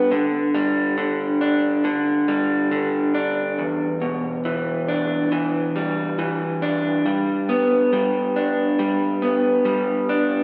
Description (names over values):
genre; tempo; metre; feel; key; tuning
rock; 69 BPM; 4/4; straight; G major; A4 = 440 Hz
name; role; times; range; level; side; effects
electric guitar through a small old amp; solo; 0.0-10.4 s; E2 to D4; -21 LUFS; equal; none
room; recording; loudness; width
wet scoring stage reverb, RT60 1.5 s; recorded in a church or concert hall; -21 LUFS; mono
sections
0.0-10.4 A section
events
none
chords
0.1 Dsus4; 3.6 Em7; 7.1 G